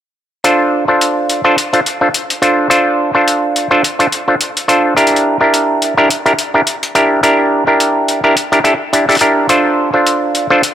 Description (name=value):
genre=glitch hop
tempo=106 BPM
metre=4/4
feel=swing 56% on 16ths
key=D minor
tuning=A4 = 440 Hz
part: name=auto-wah clav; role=stabs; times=0.4-10.6 s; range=D4 to D5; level=-10 LUFS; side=equal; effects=low-pass filter, dub echo
part: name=electronic hi-hat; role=drums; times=0.4-10.7 s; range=none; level=-17 LUFS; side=left 2 dB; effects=none
room=moderate plate reverb, RT60 2.1 s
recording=none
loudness=-10 LUFS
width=side -10 dB against mid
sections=0.4-10.7 A section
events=none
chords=0.4 Dm7; 5.0 Em7b5; 9.5 Dm7